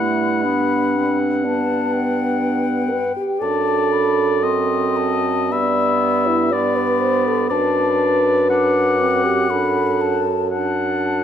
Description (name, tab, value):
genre	classical, slow romantic movement for wind quintet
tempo	60 BPM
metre	4/4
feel	rubato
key	G major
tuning	A4 = 440 Hz
part	mellow hollow concert flute	melody	0.0-11.2 s	G5 to D6	-25 LUFS	left 10 dB	none
part	warm oboe	second line	0.0-11.2 s	D5 to F#5	-23 LUFS	left 4 dB	none
part	mellow French horn	accompaniment	0.0-10.5 s	B3 to D5	-20 LUFS	equal	none
part	warm clarinet	accompaniment	0.0-11.2 s	A3 to D4	-25 LUFS	right 6 dB	none
part	dark bassoon	bass	0.0-11.2 s	F#2 to G2	-23 LUFS	right 2 dB	none
room	light reverb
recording	close, detailed microphones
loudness	-16 LUFS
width	side -9 dB against mid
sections	0.0-11.2 A section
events	none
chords	0.0 G; 3.4 F#dim7; 5.5 G; 7.5 D/F#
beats	0.45 1.45 2.43 | 3.42 4.43 5.52 6.53 | 7.51 8.50 9.50 10.52